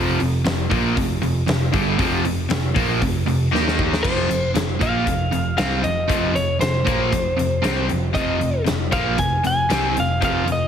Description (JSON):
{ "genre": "hard rock", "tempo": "117 BPM", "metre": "4/4", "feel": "straight", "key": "unclear", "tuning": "A4 = 440 Hz", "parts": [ { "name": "cranked stack guitar", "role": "riff", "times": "0.0-10.7 s", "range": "F2 to Eb4", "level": "-24 LUFS", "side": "left 11 dB", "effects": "overdrive" }, { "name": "crunchy overdriven guitar", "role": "riff", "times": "0.0-10.7 s", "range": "F2 to Eb4", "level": "-24 LUFS", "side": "right 10 dB", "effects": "none" }, { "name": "picked electric bass", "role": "bass", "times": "0.0-10.7 s", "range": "F1 to Eb2", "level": "-25 LUFS", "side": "equal", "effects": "none" }, { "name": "big rock drum kit", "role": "drums", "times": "0.2-10.6 s", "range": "crash cymbal, hi-hat, kick drum, snare drum", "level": "-25 LUFS", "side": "left 1 dB", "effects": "none" }, { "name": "lightly driven lead guitar", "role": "melody", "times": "4.0-10.7 s", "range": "C5 to Ab5", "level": "-23 LUFS", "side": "equal", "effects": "none" } ], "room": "light reverb, studio ambience", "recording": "heavily compressed radio sound", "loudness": "-18 LUFS", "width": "side -8 dB against mid", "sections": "0.0-4.0 A section; 4.0-10.7 B section", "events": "drum fill 3.5-4.0", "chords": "0.0 F5; 3.5 Eb5; 4.0 F5", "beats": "0.46 0.97 1.48 | 1.99 2.50 3.01 3.52 | 4.04 4.55 5.06 5.58 | 6.09 6.61 7.12 7.63 | 8.15 8.66 9.18 9.70 | 10.21" }